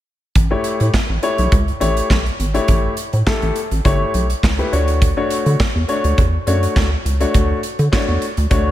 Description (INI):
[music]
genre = early-eighties boogie funk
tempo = 103 BPM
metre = 4/4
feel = straight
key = unclear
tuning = A4 = 440 Hz
[part]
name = rubbery square bass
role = bass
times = 0.4-8.7 s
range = G1 to D3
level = -17 LUFS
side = equal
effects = none
[part]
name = modern studio drum kit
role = drums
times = 0.4-8.7 s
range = handclaps, hi-hat, kick drum, snare drum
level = -19 LUFS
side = right 1 dB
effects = none
[part]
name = warm grand piano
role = accompaniment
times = 0.5-8.7 s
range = A3 to C#5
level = -20 LUFS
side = left 3 dB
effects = none
[sound]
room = light reverb, small room ambience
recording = none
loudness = -15 LUFS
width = side -13 dB against mid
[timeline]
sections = 0.4-8.7 A section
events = none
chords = 0.4 A7; 4.7 Dmaj7